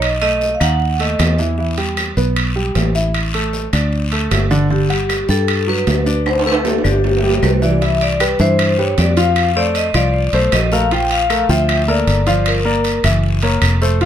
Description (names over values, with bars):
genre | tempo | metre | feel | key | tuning
Afro-Cuban jazz | 154 BPM | 4/4 | straight | G major, C major from 7.8 s | A4 = 439 Hz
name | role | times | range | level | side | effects
vibraphone with medium mallets | melody | 0.0-1.4, 4.7-13.0 s | G4 to G5 | -18 LUFS | left 2 dB | none
clear concert grand piano | accompaniment | 0.0-14.1 s | D3 to G5 | -20 LUFS | equal | none
fingered electric bass | bass | 0.0-14.1 s | F1 to G2 | -17 LUFS | equal | none
claves | percussion | 0.0-13.8 s | none | -25 LUFS | left 1 dB | none
guiro | percussion | 0.0-14.1 s | none | -28 LUFS | left 4 dB | none
timbales | percussion | 0.0-14.1 s | none | -22 LUFS | right 3 dB | none
room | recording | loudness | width
little or no reverb | close, detailed microphones | -13 LUFS | side -10 dB against mid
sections
0.0-7.8 A section; 7.8-14.1 B section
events
drum fill 6.3-7.8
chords
0.0 B7; 1.6 Emadd11; 3.1 Asus4; 3.9 D5; 4.7 Gmaj9; 6.3 D5; 7.0 G5; 7.8 Cmaj7; 9.4 F6; 10.9 Bb6; 12.5 Gm7; 13.2 F#7